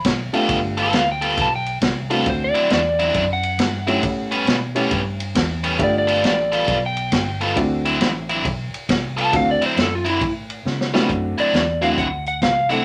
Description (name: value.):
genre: electric blues shuffle.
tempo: 136 BPM.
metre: 4/4.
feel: swing 65% on 8ths.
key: D mixolydian.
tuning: A4 = 440 Hz.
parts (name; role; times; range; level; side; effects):
electric slide guitar; melody; 0.0-12.8 s; E4 to B5; -23 LUFS; equal; none.
vintage muted fingered electric bass; bass; 0.0-12.8 s; G1 to C#3; -30 LUFS; equal; none.
swinging big-band drum kit; drums; 0.0-12.8 s; hi-hat, kick drum, ride cymbal, snare drum; -26 LUFS; equal; none.
warm baby grand piano; accompaniment; 0.3-12.8 s; A3 to A4; -25 LUFS; equal; none.
biting overdriven guitar; riff; 0.3-12.8 s; A2 to A4; -24 LUFS; equal; none.
room: moderate club reverb, RT60 0.6 s.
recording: none.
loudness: -20 LUFS.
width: mono.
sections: 0.0-11.1 A section; 11.1-12.8 B section.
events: electric slide guitar solo 0.0-11.1; drum fill 10.7-11.1.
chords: 0.0 G9; 2.3 D9; 4.0 A9; 5.8 G9; 7.6 D9; 8.4 G9; 9.3 D9; 10.2 A9; 11.1 D9.